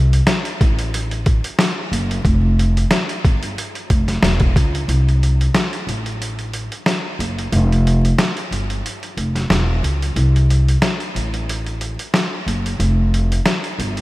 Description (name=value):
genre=hip hop, boom-bap hip-hop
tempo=91 BPM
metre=4/4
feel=swing 55% on 16ths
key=unclear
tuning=A4 = 440 Hz
part: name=upright bass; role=bass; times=0.0-14.0 s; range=E1 to Db2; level=-17 LUFS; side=equal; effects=none
part: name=boom bap sampler-style drum kit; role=drums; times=0.1-14.0 s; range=hi-hat, kick drum, snare drum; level=-19 LUFS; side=equal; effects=none
room=light reverb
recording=vinyl crackle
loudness=-16 LUFS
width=side -18 dB against mid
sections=0.0-4.9 A section; 4.9-14.0 B section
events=kick muted 4.9-14.0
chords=none